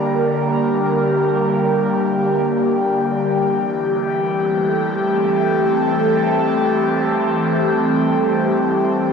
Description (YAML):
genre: ambient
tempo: free time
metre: none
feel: none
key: unclear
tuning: A4 = 439 Hz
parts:
  - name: airy breathy pad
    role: sustained chords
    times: 0.0-9.1 s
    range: D3 to Bb4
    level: -17 LUFS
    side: equal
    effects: chorus, phaser
  - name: analog drone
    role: drone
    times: 0.0-9.1 s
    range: G3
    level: -26 LUFS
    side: equal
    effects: chorus, phaser
  - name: glass harmonica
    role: texture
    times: 0.0-9.1 s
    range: G4 to G5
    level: -23 LUFS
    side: left 1 dB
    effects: none
room: wet huge ambient reverb, RT60 8.9 s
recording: worn, warbling old tape, cassette tape, warbly pitch drift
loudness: -16 LUFS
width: side -6 dB against mid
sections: 0.0-9.1 A section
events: none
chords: 0.0 Gm; 3.5 Am7